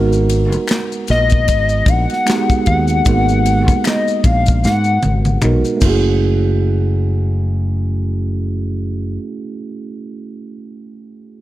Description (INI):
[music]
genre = R&B, neo-soul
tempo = 76 BPM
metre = 4/4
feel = swing 56% on 16ths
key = unclear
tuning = A4 = 440 Hz
[part]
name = mellow tine electric piano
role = accompaniment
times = 0.0-11.4 s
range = G#3 to A#4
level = -20 LUFS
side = right 4 dB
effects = phaser
[part]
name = fingered electric bass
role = bass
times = 0.0-9.2 s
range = F#1 to G#2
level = -16 LUFS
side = equal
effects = none
[part]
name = maracas and finger snaps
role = percussion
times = 0.1-6.6 s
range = none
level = -29 LUFS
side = left 5 dB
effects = none
[part]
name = tight funk drum kit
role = drums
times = 0.3-6.0 s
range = crash cymbal, handclaps, kick drum, ride cymbal, snare drum, toms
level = -17 LUFS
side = equal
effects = none
[part]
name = hollow square lead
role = melody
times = 1.1-5.4 s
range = D#5 to F#5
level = -18 LUFS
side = left 4 dB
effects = chorus
[sound]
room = small room reverb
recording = none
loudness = -13 LUFS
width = side -15 dB against mid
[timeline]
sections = 0.0-6.2 A section; 6.2-9.4 B section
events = drum fill 4.6-6.2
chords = 0.0 G#m9; 5.8 F#m9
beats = 0.69 1.48 2.26 | 3.05 3.84 4.63 5.42 | 6.21 7.00 7.79 8.58